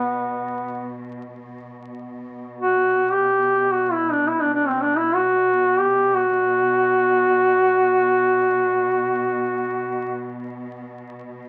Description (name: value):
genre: caucasian folk, Caucasian lament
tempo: free time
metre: none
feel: none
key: B minor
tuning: A4 = 440 Hz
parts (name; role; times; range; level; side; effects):
- mellow duduk; melody; 0.0-10.4 s; B3 to G4; -20 LUFS; equal; none
- warm studio cello section; drone; 0.0-11.5 s; B2; -36 LUFS; equal; none
room: light reverb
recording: very old 78 rpm record, vinyl crackle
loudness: -20 LUFS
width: mono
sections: 0.0-1.4 A section; 1.4-11.5 A section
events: none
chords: none